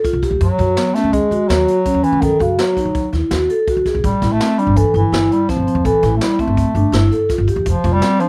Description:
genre	progressive instrumental, band music in an uneven meter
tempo	166 BPM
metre	5/4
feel	straight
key	unclear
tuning	A4 = 440 Hz
part	vibraphone with soft mallets	arpeggios	0.0-8.3 s	B3 to A4	-20 LUFS	equal	none
part	vintage brush drum kit	drums	0.0-8.3 s	hi-hat, kick drum, snare drum	-26 LUFS	equal	none
part	upright bass	bass	0.1-8.0 s	F1 to F#2	-21 LUFS	equal	none
part	warm bass clarinet	melody	0.4-8.3 s	C#3 to A3	-21 LUFS	equal	none
room	little or no reverb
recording	none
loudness	-16 LUFS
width	mono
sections	0.0-8.3 A section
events	none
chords	0.4 F#5; 4.0 Am; 7.7 F5

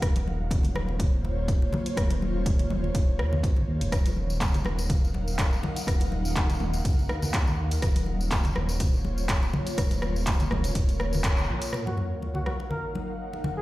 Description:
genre	afro house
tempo	123 BPM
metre	4/4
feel	swing 55% on 16ths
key	Eb dorian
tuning	A4 = 440 Hz
part	ethereal airy pad	sustained chords	0.0-13.6 s	Bb3 to Gb5	-35 LUFS	equal	ensemble chorus, built-in reverb, tremolo, sidechain pumping
part	dark detuned saw bass	bass	0.0-11.6 s	Eb1 to Eb2	-29 LUFS	equal	sidechain pumping
part	deep house drum kit	drums	0.0-12.6 s	handclaps, hi-hat, rim click, toms	-32 LUFS	equal	overdrive
part	electronic kick drum	drums	0.0-11.3 s	none	-26 LUFS	equal	overdrive
part	congas	percussion	0.0-13.5 s	none	-34 LUFS	left 2 dB	none
part	tambourine	percussion	3.9-11.7 s	none	-41 LUFS	left 2 dB	none
part	sub drop	sound effects	11.7-13.6 s	none	-33 LUFS	equal	none
part	trumpet with bucket mute	melody	11.9-13.6 s	Gb4 to Bb4	-36 LUFS	equal	digital delay
room	light reverb, digital ambience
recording	played on a big sound system in a bare room, stone room reverb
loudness	-24 LUFS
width	side -17 dB against mid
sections	0.0-11.7 A section; 11.7-13.6 B section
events	band accent 11.2; impact 11.7-13.6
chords	0.0 Bbm/Eb; 3.9 Ebm; 7.8 Bbm/Eb; 11.7 Ebm

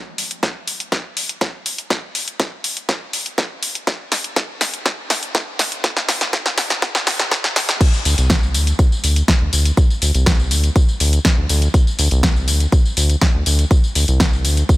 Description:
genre	progressive house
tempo	122 BPM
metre	4/4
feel	straight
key	unclear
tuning	A4 = 440 Hz
part	house drum kit	drums	0.2-14.8 s	crash cymbal, hi-hat, snare drum, tambourine	-19 LUFS	equal	high-pass filter on perc, studio reverb, high-pass filter on hats, high-pass filter on snare, high-pass filter on cymbals
part	electronic kick drum	drums	0.4-14.8 s	none	-15 LUFS	equal	high-pass filter on kick, studio reverb
part	round analog bass	bass	8.1-14.6 s	C2 to D2	-16 LUFS	equal	tube saturation, sidechain pumping
room	digital ambience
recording	high-pass filter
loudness	-15 LUFS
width	side -18 dB against mid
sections	0.0-7.8 A section; 7.8-14.8 B section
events	build-up 0.0-7.8; drum fill 0.0-7.8; drop 7.8-14.8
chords	none

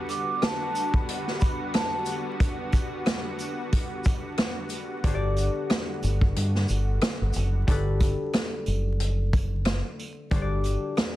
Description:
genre	hip hop, boom-bap hip-hop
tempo	91 BPM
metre	4/4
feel	swing 56% on 16ths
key	G major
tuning	A4 = 440 Hz
part	concert harp	accompaniment	0.0-1.0, 5.0-11.2 s	D3 to D5	-32 LUFS	left 3 dB	cassette tape, high-pass filter, low-pass filter
part	lush unison pad	sustained chords	0.0-7.6 s	D3 to F#4	-34 LUFS	equal	chorus, high-pass filter, low-pass filter
part	vibraphone with soft mallets	melody	0.1-2.0 s	A5 to D6	-31 LUFS	right 1 dB	high-pass filter, low-pass filter, ping-pong delay
part	vintage drum kit	drums	0.1-11.2 s	hi-hat, kick drum, rim click, shaker, snare drum	-26 LUFS	equal	none
part	sleigh bells	percussion	0.1-11.1 s	none	-45 LUFS	right 5 dB	none
part	deep dub fingered electric bass	bass	5.0-10.8 s	F#1 to G2	-25 LUFS	equal	none
room	small room ambience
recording	dense, heavily limited modern master, vinyl crackle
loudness	-24 LUFS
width	side -15 dB against mid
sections	0.0-7.7 A section; 7.7-11.2 B section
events	break 0.0-5.0; kick muted 6.4-7.7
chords	0.0 Gmaj7

